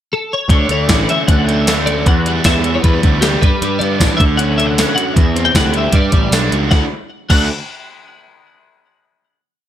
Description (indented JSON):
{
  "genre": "indie rock",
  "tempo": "154 BPM",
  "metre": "4/4",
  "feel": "straight",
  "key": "D major",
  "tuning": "A4 = 440 Hz",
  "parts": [
    { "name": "twelve-string electric guitar", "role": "melody", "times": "0.1-7.5 s", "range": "G4 to G5", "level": "-19 LUFS", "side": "left 2 dB", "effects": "ensemble chorus" },
    { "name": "overdriven electric guitar", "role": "riff", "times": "0.5-7.5 s", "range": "E2 to G4", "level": "-18 LUFS", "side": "right 1 dB", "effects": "none" },
    { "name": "fuzz picked electric bass", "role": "bass", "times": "0.5-7.5 s", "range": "A1 to G2", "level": "-18 LUFS", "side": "equal", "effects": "overdrive" },
    { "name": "gated 80s digital drum machine", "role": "drums", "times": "0.5-7.4 s", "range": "crash cymbal, hi-hat, kick drum, snare drum, tambourine", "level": "-15 LUFS", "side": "equal", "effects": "gated reverb, gated reverb snare" }
  ],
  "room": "little or no reverb",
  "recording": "none",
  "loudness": "-11 LUFS",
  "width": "side -11 dB against mid",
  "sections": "0.0-0.5 pickup bar; 0.5-6.7 interlude; 6.7-8.3 final chord",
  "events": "kick and snare drop out 6.5",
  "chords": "0.5 D5; 2.1 Em; 3.4 G; 4.2 Dmaj7; 5.2 C/E; 5.9 Gmaj7; 6.7 D",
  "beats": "0.10 | 0.49 0.88 1.27 1.67 | 2.06 2.45 2.84 3.23 | 3.62 4.00 4.39 4.78 | 5.17 5.55 5.94 6.33 | 6.71 7.10"
}